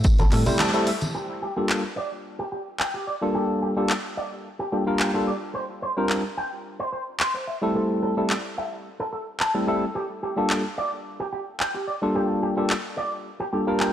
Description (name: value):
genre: nu-disco, nu disco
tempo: 109 BPM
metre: 4/4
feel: straight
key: G dorian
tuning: A4 = 440 Hz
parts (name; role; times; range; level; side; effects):
- fingered electric bass with an envelope filter; bass; 0.0-0.5 s; A1 to A2; -23 LUFS; equal; transformer saturation, sidechain pumping
- house drum kit; drums; 0.0-13.9 s; handclaps, hi-hat; -28 LUFS; equal; none
- tambourine and congas; percussion; 0.0-1.1 s; none; -30 LUFS; left 1 dB; none
- electric guitar with an envelope filter; riff; 0.2-13.9 s; G4 to C6; -30 LUFS; right 1 dB; lush chorus, low-pass filter, analog delay
- barky tine electric piano; accompaniment; 0.3-13.9 s; G3 to C5; -25 LUFS; equal; overdrive, wide subtle chorus, analog delay
room: moderate lush hall reverb, RT60 1.9 s, digital ambience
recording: dry, gritty hardware recording, transformer saturation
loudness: -23 LUFS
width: side -10 dB against mid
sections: 0.0-1.1 A section; 1.1-13.9 B section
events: break 0.6-1.1; band accent 0.6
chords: 0.0 Am7; 1.1 Gm9; 5.5 C9sus4/G; 7.5 Am7; 10.0 Gm9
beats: 0.04 0.59 | 1.15 1.70 2.25 2.80 | 3.35 3.90 4.45 5.00 | 5.55 6.10 6.65 7.20 | 7.75 8.30 8.85 9.40 | 9.95 10.50 11.05 11.60 | 12.15 12.71 13.26 13.80